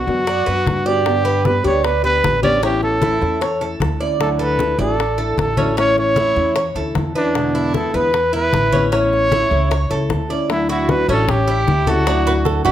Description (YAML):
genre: latin, Cuban son and guajira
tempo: 153 BPM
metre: 4/4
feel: straight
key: D major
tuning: A4 = 440 Hz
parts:
  - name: breathy trumpet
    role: melody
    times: 0.0-12.7 s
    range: D4 to D5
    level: -18 LUFS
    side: equal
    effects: none
  - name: nylon-string guitar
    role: accompaniment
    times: 0.0-12.7 s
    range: B2 to G4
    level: -23 LUFS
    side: left 2 dB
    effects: none
  - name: Cuban tres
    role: arpeggios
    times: 0.0-12.7 s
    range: C#4 to D5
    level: -22 LUFS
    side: right 2 dB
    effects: none
  - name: upright bass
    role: bass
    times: 0.1-12.7 s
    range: A1 to G2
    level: -22 LUFS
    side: equal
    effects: none
  - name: bongos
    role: percussion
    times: 0.1-12.7 s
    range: none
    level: -27 LUFS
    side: left 7 dB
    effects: none
  - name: congas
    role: percussion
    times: 0.1-12.7 s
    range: none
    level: -24 LUFS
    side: left 2 dB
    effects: none
  - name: flamenco guitar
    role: second line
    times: 12.3-12.7 s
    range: G4 to B4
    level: -18 LUFS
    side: right 6 dB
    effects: none
room: moderate large studio reverb, RT60 0.8 s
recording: none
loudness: -15 LUFS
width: side -11 dB against mid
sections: 0.0-10.5 A section; 10.5-12.7 B section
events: none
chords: 0.0 Bm; 1.1 G; 2.6 A; 4.2 Dadd9; 5.8 A; 7.3 E7; 8.9 A; 10.5 Dadd9; 11.3 A7; 12.1 Dadd9